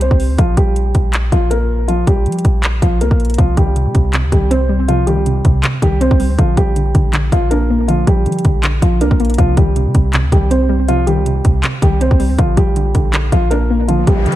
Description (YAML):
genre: hip hop, trap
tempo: 160 BPM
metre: 4/4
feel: half-time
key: unclear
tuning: A4 = 439 Hz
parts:
  - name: dark concert grand piano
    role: melody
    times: 0.0-14.4 s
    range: F3 to C5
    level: -18 LUFS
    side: equal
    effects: low-pass filter, tape echo
  - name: clean 808-style bass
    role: bass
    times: 0.0-14.4 s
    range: Bb1 to F3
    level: -16 LUFS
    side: equal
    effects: none
  - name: trap drum kit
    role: drums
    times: 0.0-14.4 s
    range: handclaps, hi-hat, kick drum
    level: -15 LUFS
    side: equal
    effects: none
  - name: soft round pluck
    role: accompaniment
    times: 3.4-14.4 s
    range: C3 to D4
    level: -18 LUFS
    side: equal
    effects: chorus, low-pass filter, tape echo
  - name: riser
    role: sound effects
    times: 14.0-14.4 s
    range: none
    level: -24 LUFS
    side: equal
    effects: none
room: little or no reverb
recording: echo-heavy mix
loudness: -11 LUFS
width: side -14 dB against mid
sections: 0.0-14.4 A section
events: riser 14.0-14.4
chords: 0.4 Bb5; 3.4 Cm; 6.4 Bb; 9.4 Cm; 12.4 Bb